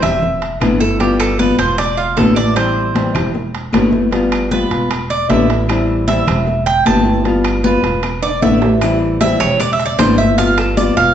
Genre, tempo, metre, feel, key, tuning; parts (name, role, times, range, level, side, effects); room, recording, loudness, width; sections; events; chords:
latin, Cuban son and guajira; 154 BPM; 4/4; straight; A4 = 440 Hz
nylon-string guitar; accompaniment; 0.0-11.1 s; D3 to F4; -16 LUFS; left 2 dB
Cuban tres; arpeggios; 0.0-11.1 s; F4 to A5; -17 LUFS; right 3 dB
upright bass; bass; 0.0-11.1 s; E1 to A1; -20 LUFS; equal
claves; percussion; 0.0-10.8 s; -32 LUFS; left 2 dB
congas; percussion; 0.0-11.0 s; -21 LUFS; left 2 dB
timbales; percussion; 0.0-11.1 s; -24 LUFS; right 4 dB
bongos; percussion; 8.8-11.0 s; -26 LUFS; left 4 dB
maracas; percussion; 8.8-11.1 s; -35 LUFS; left 4 dB
wet large studio reverb, RT60 1.2 s; heard from further back in the room, nothing above 7.9 kHz; -12 LUFS; side -9 dB against mid
0.0-11.1 A section
Cuban tres solo 0.0-11.1; drum fill 8.2-8.8
0.2 E7sus4; 1.0 G7; 1.8 E7sus4; 2.6 Am7; 3.3 E7sus4; 4.1 G7; 4.9 E7sus4; 5.7 Am7; 6.5 E7sus4; 7.3 G7; 8.0 E7sus4; 8.8 Am7; 9.6 E7sus4; 10.4 G7